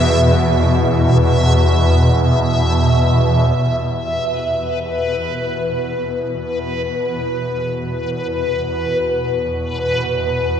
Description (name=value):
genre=dark ambient drone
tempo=free time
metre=none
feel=none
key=unclear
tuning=A4 = 440 Hz
part: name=dark analog pad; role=sustained chords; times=0.0-10.6 s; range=E4 to F#5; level=-29 LUFS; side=equal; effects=chorus, phaser
part: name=carillon bells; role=arpeggios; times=0.0-10.6 s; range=E4 to A4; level=-40 LUFS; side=left 4 dB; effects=none
part: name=swarming drone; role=drone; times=0.0-10.6 s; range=E2 to B2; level=-16 LUFS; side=equal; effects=built-in reverb, phaser
part: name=backwards swelling texture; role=texture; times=0.0-10.6 s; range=B4 to E5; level=-20 LUFS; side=equal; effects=built-in reverb
room=wet cathedral reverb, RT60 5.8 s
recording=dark, warm production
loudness=-15 LUFS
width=side -8 dB against mid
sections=0.0-3.6 A section; 3.6-10.6 B section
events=none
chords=0.0 Esus2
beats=free time